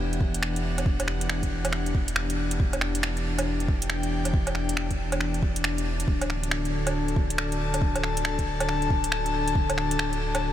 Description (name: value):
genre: future garage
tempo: 138 BPM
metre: 4/4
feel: swing 63% on 16ths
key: E minor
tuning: A4 = 439 Hz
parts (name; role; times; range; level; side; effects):
- airy breathy pad; sustained chords; 0.0-10.5 s; D3 to A5; -29 LUFS; left 3 dB; chorus, sidechain pumping
- soft dub sub bass; bass; 0.0-10.5 s; D1 to E1; -30 LUFS; equal; sidechain pumping
- garage drum kit; drums; 0.1-10.4 s; finger snaps, hi-hat, woodblock; -30 LUFS; right 2 dB; small room ambience
- electronic kick drum; drums; 0.2-9.7 s; none; -26 LUFS; equal; overdrive, small room ambience
room: moderate huge ambient reverb, RT60 7.1 s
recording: dreamy mix soaked in reverb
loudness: -24 LUFS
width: side -11 dB against mid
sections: 0.0-10.5 A section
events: none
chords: 0.0 Em7; 6.1 D